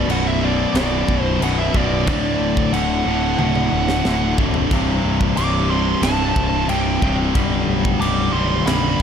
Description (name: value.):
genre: heavy metal.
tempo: 91 BPM.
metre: 4/4.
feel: straight.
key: unclear.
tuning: A4 = 441 Hz.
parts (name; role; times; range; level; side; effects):
high-gain lead guitar; melody; 0.0-9.0 s; D5 to D6; -24 LUFS; right 2 dB; distortion.
heavy high-gain guitar; riff; 0.0-9.0 s; B1 to G3; -25 LUFS; right 13 dB; distortion.
overdriven electric guitar; riff; 0.0-9.0 s; B1 to G3; -24 LUFS; right 1 dB; none.
tight distorted guitar; riff; 0.0-9.0 s; B1 to G3; -24 LUFS; left 13 dB; distortion.
fuzz picked electric bass; bass; 0.0-9.0 s; B0 to D1; -22 LUFS; equal; overdrive.
tight metal drum kit; drums; 0.1-9.0 s; crash cymbal, kick drum, snare drum, toms; -24 LUFS; equal; none.
room: studio ambience.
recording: dark, warm production.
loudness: -16 LUFS.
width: side -8 dB against mid.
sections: 0.0-9.0 A section.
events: drum fill 3.4-4.7.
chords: 0.0 Bm; 2.1 D; 4.7 C5; 7.4 G/B.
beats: 0.09 0.75 1.41 | 2.07 2.73 3.40 4.05 | 4.71 5.37 6.03 6.69 | 7.35 8.01 8.67.